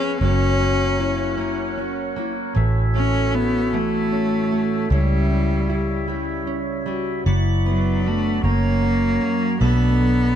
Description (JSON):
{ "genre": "six-eight pop ballad", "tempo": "51 BPM (dotted quarters)", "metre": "6/8", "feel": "straight", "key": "unclear", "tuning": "A4 = 440 Hz", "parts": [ { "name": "rich cello", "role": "melody", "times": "0.0-10.4 s", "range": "F#3 to C#4", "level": "-22 LUFS", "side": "equal", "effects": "tape echo" }, { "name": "dark French horn section", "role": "second line", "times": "0.0-10.4 s", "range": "C#4 to G#4", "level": "-29 LUFS", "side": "left 9 dB", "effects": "none" }, { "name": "nylon-string guitar", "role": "accompaniment", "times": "0.0-10.4 s", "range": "F#2 to G#4", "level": "-28 LUFS", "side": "right 14 dB", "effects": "none" }, { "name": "percussive tonewheel organ", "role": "sustained chords", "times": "0.0-10.4 s", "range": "G3 to B5", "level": "-30 LUFS", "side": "equal", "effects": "overdrive, slow rotary speaker" }, { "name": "fingerpicked steel-string acoustic guitar", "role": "arpeggios", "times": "0.0-10.4 s", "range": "E3 to A4", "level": "-32 LUFS", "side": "left 16 dB", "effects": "none" }, { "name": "vintage muted fingered electric bass", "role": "bass", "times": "0.0-10.4 s", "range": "E#1 to C#2", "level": "-21 LUFS", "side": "equal", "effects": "none" } ], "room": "little or no reverb", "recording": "dry, close 1970s-style studio recording, faint mains hum", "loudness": "-18 LUFS", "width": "side -9 dB against mid", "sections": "0.0-10.4 A section", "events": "none", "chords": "0.2 F#; 2.6 A; 4.9 C#dim; 7.3 Bm/F#; 8.4 F#; 9.6 Bm7" }